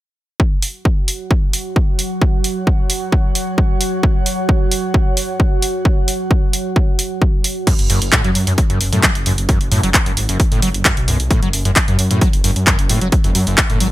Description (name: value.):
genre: driving peak-time techno.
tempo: 132 BPM.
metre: 4/4.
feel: straight.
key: unclear.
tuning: A4 = 444 Hz.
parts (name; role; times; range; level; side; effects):
deep dark ambient pad; drone; 1.1-7.7 s; F#3 to F#4; -25 LUFS; right 2 dB; chorus, built-in reverb, sidechain pumping.
electronic kick drum; drums; 0.4-13.7 s; none; -15 LUFS; equal; overdrive.
airy breathy pad; texture; 0.4-7.7 s; F#4 to F#5; -28 LUFS; right 2 dB; chorus, sidechain pumping.
punchy analog drum machine; drums; 0.6-13.9 s; crash cymbal, handclaps, hi-hat; -18 LUFS; equal; overdrive, sidechain pumping on hats, sidechain pumping on cymbals.
screaming distorted acid line; riff; 7.7-13.9 s; F#2 to F#3; -20 LUFS; equal; distortion, analog chorus, sidechain pumping, digital delay.
detuned saw bass; bass; 7.8-13.9 s; F#1 to F#2; -19 LUFS; equal; sidechain pumping.
room: digital ambience.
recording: bright 1980s-style digital production.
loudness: -13 LUFS.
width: side -15 dB against mid.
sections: 0.4-7.7 A section; 7.7-13.9 B section.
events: fade-in on analog synth pad 0.4-7.7.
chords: 0.4 F#5.